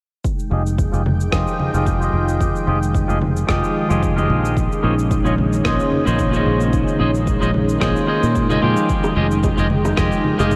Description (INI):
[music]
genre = sunset chillout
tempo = 111 BPM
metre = 4/4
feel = swing 55% on 16ths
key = F minor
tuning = A4 = 440 Hz
[part]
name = lush unison pad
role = sustained chords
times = 0.2-10.6 s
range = Db3 to G5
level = -24 LUFS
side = equal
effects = chorus
[part]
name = electronic kick drum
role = drums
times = 0.2-10.6 s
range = none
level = -25 LUFS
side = equal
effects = overdrive, small room ambience
[part]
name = electronic shaker, congas and rim click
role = drums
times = 0.2-10.6 s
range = none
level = -29 LUFS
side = equal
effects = overdrive, small room ambience
[part]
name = clean electric guitar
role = accompaniment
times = 0.5-10.6 s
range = F3 to G5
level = -24 LUFS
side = equal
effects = low-pass filter, delay
[part]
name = fingered electric bass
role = bass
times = 0.5-10.6 s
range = F1 to Bb2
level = -22 LUFS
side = equal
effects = none
[part]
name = bongos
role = percussion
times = 9.0-10.5 s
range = none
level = -30 LUFS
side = equal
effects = none
[sound]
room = moderate huge ambient reverb, RT60 8.3 s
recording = dreamy mix soaked in reverb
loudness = -18 LUFS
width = mono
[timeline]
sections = 0.2-10.6 A section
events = filter sweep on clean electric guitar 0.2-10.6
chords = 0.2 Fm9; 4.6 Bbm11; 8.9 Fm9